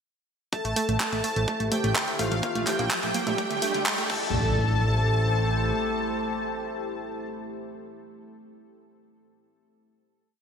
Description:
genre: melodic techno.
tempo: 126 BPM.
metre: 4/4.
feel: straight.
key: A phrygian.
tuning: A4 = 441 Hz.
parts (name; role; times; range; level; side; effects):
soft supersaw; melody; 0.5-7.3 s; F4 to A4; -32 LUFS; equal; sidechain pumping, low-pass filter, ping-pong delay.
big bright polysynth; second line; 0.5-7.3 s; F5 to A5; -32 LUFS; left 1 dB; chorus, sidechain pumping, ping-pong delay.
deep dark ambient pad; sustained chords; 1.2-7.3 s; A3 to D5; -34 LUFS; equal; chorus, built-in reverb, sidechain pumping.
analog pluck; arpeggios; 0.5-4.5 s; A3 to Bb3; -31 LUFS; right 3 dB; chorus, sidechain pumping, ping-pong delay.
deep house drum kit; drums; 0.5-4.2 s; crash cymbal, handclaps, hi-hat, toms; -29 LUFS; equal; high-pass filter on hats, high-pass filter on snare, high-pass filter on toms, high-pass filter on cymbals, gated reverb.
electronic kick drum; drums; 0.5-4.2 s; none; -34 LUFS; equal; high-pass filter on kick, high-pass filter on room.
riser and impact; sound effects; 2.5-7.3 s; none; -35 LUFS; equal; none.
fat analog bass; bass; 0.6-5.7 s; A1 to D2; -27 LUFS; equal; sidechain pumping.
room: wet lush hall reverb, RT60 1.9 s, digital ambience.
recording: bright 1980s-style digital production, high-pass filter.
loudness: -24 LUFS.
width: side -7 dB against mid.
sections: 0.5-4.3 build; 4.3-8.1 final hit.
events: build-up 0.5-4.3; filter sweep on supersaw synth 0.5-4.3; riser 2.5-4.3.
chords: 0.5 Am7; 2.4 Bb; 3.4 D5; 4.1 Am7.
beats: | 0.53 1.00 1.48 1.96 | 2.43 2.91 3.38 3.86 | 4.34 4.81 5.29 5.76 | 6.24 6.72 7.19.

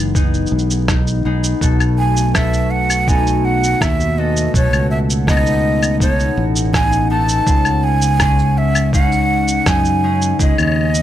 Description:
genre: folktronica.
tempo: 82 BPM.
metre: 4/4.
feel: straight.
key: unclear.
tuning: A4 = 439 Hz.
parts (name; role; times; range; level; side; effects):
warbly tape-like pad; sustained chords; 0.0-11.0 s; G#3 to F#5; -26 LUFS; equal; chorus, built-in reverb.
concert harp; arpeggios; 0.0-11.0 s; B2 to A4; -21 LUFS; left 4 dB; tape echo.
fingered electric bass; bass; 0.0-11.0 s; F#1 to F#2; -18 LUFS; equal; none.
electronic kick drum; drums; 0.1-10.5 s; none; -18 LUFS; equal; none.
electronic cabasa, rim click and claves; drums; 0.2-11.0 s; none; -21 LUFS; left 1 dB; none.
breathy jazz flute; melody; 2.0-11.0 s; C#5 to A5; -19 LUFS; right 2 dB; tape echo.
room: light reverb.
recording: none.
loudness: -13 LUFS.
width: side -12 dB against mid.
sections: 0.0-11.0 A section.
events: none.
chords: 0.0 Emaj7; 1.6 B7; 7.5 C#sus2.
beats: 0.15 0.88 | 1.61 2.35 3.08 3.81 | 4.54 5.27 6.00 6.74 | 7.47 8.20 8.93 9.66 | 10.39.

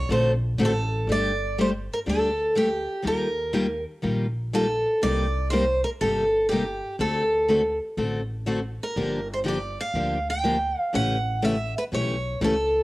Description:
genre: acoustic string swing (jazz manouche).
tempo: 122 BPM.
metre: 4/4.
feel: swing 65% on 8ths.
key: G minor.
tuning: A4 = 440 Hz.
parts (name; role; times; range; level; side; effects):
picked steel-string acoustic guitar; melody; 0.0-12.8 s; G4 to G5; -24 LUFS; right 1 dB; none.
upright bass; bass; 0.0-12.8 s; G1 to Eb2; -30 LUFS; equal; none.
picked steel-string acoustic guitar; accompaniment; 0.1-12.5 s; C3 to A4; -26 LUFS; left 2 dB; none.
room: light reverb, studio reverb.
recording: home recording on cassette.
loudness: -22 LUFS.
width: side -18 dB against mid.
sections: 0.0-1.1 A section; 1.1-12.8 B section.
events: steel-string acoustic guitar solo 0.0-1.1.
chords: 0.0 D7; 1.1 Gsus2; 3.1 Ebadd9; 5.0 Cm7; 7.0 D7; 9.0 Gm7; 10.9 A7.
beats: 0.10 0.59 | 1.08 1.58 2.07 2.56 | 3.05 3.54 4.04 4.53 | 5.02 5.51 6.01 6.50 | 6.99 7.48 7.98 8.47 | 8.96 9.46 9.95 10.44 | 10.93 11.43 11.92 12.41.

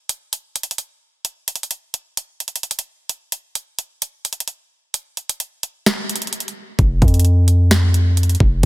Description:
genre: hip hop, trap.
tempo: 130 BPM.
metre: 4/4.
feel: half-time.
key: unclear.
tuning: A4 = 444 Hz.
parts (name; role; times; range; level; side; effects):
trap drum kit; drums; 0.1-8.7 s; hi-hat, kick drum, snare drum; -18 LUFS; equal; none.
warm 808-style bass; bass; 6.8-8.7 s; F1 to F2; -13 LUFS; equal; none.
room: little or no reverb.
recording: dense, heavily limited modern master.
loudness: -18 LUFS.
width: side -18 dB against mid.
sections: 0.0-6.8 A section; 6.8-8.7 B section.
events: kick muted 4.9-6.8.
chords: none.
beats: 0.33 0.79 | 1.25 1.71 2.17 2.63 | 3.10 3.56 4.02 4.48 | 4.94 5.40 5.86 6.33 | 6.79 7.25 7.71 8.17 | 8.63.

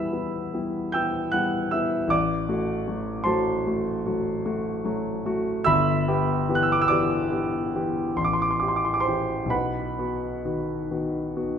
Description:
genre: classical, romantic nocturne for solo piano.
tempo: 43-52 BPM (dotted quarters).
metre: 9/8.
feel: rubato.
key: E minor.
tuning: A4 = 440 Hz.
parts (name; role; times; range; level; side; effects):
warm grand piano; solo; 0.0-11.6 s; G1 to G6; -23 LUFS; equal; none.
room: moderate scoring stage reverb, RT60 1.5 s.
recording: minimal, uncompressed stereo recording.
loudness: -23 LUFS.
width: side -8 dB against mid.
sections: 0.0-11.6 A section.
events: none.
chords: 0.0 Em; 2.1 F#dim/A; 5.7 Em/G; 8.2 Am7; 9.5 B.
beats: 0.94 | 2.12 3.27 4.45 | 5.67 6.91 8.17 | 9.51 10.90.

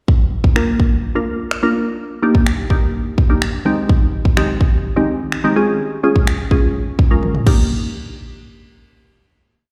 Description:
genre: dance-pop.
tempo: 126 BPM.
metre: 4/4.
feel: straight.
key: unclear.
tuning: A4 = 440 Hz.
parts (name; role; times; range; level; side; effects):
pop drum kit; drums; 0.1-7.6 s; crash cymbal, finger snaps, kick drum, toms; -17 LUFS; equal; none.
glassy wavetable pluck; accompaniment; 0.6-7.7 s; Eb3 to Bb4; -20 LUFS; equal; chorus, sidechain pumping, slapback echo.
room: light reverb, digital ambience.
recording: live gig heard through the venue's PA, recital hall reverb.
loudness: -16 LUFS.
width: mono.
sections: 0.1-7.7 verse; 7.7-9.6 final hit.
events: drum fill 7.2-7.7.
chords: 0.1 Bb; 2.0 Ebmaj7; 3.7 Abmaj7/Eb; 5.6 Db; 7.5 Ebmaj7; 7.7 N.C..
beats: | 0.08 0.56 1.04 1.51 | 1.99 2.46 2.94 3.42 | 3.89 4.37 4.84 5.32 | 5.80 6.27 6.75 7.23.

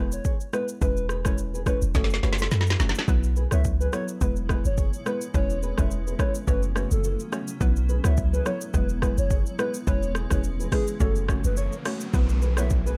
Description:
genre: afrobeats.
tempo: 106 BPM.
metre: 4/4.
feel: swing 55% on 16ths.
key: unclear.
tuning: A4 = 441 Hz.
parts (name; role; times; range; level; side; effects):
hollow square pluck; accompaniment; 0.0-13.0 s; F#3 to C#5; -35 LUFS; equal; chorus.
nylon-string guitar; riff; 0.0-12.9 s; E4 to C#5; -39 LUFS; equal; tape echo.
clean 808-style bass; bass; 0.0-12.9 s; E1 to F#2; -27 LUFS; equal; none.
hollow clarinet-like synth lead; melody; 0.1-13.0 s; G#4 to E5; -35 LUFS; equal; chorus, phaser, tape echo.
afro-pop drum kit; drums; 0.1-13.0 s; hi-hat, kick drum, rim click, shaker, snare drum; -29 LUFS; equal; none.
granular cloud pad; sustained chords; 3.8-13.0 s; C#3 to E4; -40 LUFS; equal; built-in reverb.
riser and downlifter; sound effects; 10.9-13.0 s; none; -43 LUFS; equal; none.
room: little or no reverb.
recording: dark, warm production.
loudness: -25 LUFS.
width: mono.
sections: 0.0-3.1 A section; 3.1-12.1 B section.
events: drum fill 1.9-3.1; riser 10.9-12.1.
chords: 0.0 E; 0.8 C#m7/E; 1.9 F#m; 3.1 Bsus4; 4.2 E; 5.3 C#m7/E; 6.5 F#m; 7.6 Bsus4; 8.7 E; 9.9 C#m7/E; 11.0 F#m; 12.1 Bsus4.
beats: 0.25 | 0.82 1.38 1.95 2.51 | 3.08 3.65 4.21 4.78 | 5.34 5.91 6.48 7.04 | 7.61 8.18 8.74 9.31 | 9.87 10.44 11.01 11.57 | 12.14 12.70.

